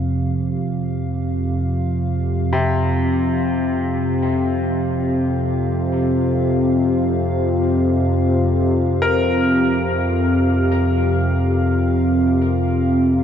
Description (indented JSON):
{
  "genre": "dark ambient drone",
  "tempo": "free time",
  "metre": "none",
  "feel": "none",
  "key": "unclear",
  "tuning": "A4 = 440 Hz",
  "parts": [
    { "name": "dark analog pad", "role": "sustained chords", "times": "0.0-13.2 s", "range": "C4 to F5", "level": "-26 LUFS", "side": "right 1 dB", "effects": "chorus" },
    { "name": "analog drone", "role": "drone", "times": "0.0-13.2 s", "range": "F2 to C3", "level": "-17 LUFS", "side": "equal", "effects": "chorus" },
    { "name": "bright concert grand piano", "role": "arpeggios", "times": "2.5-13.2 s", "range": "C3 to Bb4", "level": "-25 LUFS", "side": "left 2 dB", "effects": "tape echo" }
  ],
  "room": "wet huge ambient reverb, RT60 7.6 s",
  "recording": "dark, warm production",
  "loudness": "-16 LUFS",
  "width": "side -8 dB against mid",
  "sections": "0.0-13.2 A section",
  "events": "fade-in on analog synth pad 0.0-13.2",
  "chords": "0.0 Fsus2",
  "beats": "free time"
}